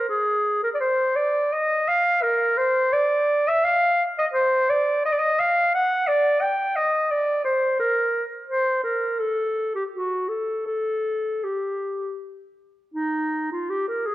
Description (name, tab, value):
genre	classical, baroque-style fantasia for unaccompanied clarinet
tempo	77-89 BPM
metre	3/4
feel	rubato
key	C minor, G minor from 4.3 s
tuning	A4 = 440 Hz
part	warm clarinet	solo	0.0-14.1 s	Eb4 to G5	-20 LUFS	equal	none
room	wet recital hall reverb, RT60 1.5 s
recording	worn, warbling old tape, cassette tape, warbly pitch drift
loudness	-20 LUFS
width	side -15 dB against mid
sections	0.0-12.9 A section; 12.9-14.1 A section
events	none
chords	none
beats	| 0.11 0.81 1.53 | 2.24 2.93 3.64 | 4.35 5.05 5.75 | 6.43 7.11 7.79 | 8.48 9.20 9.93 | 10.66 11.42 12.18 | 12.95 13.70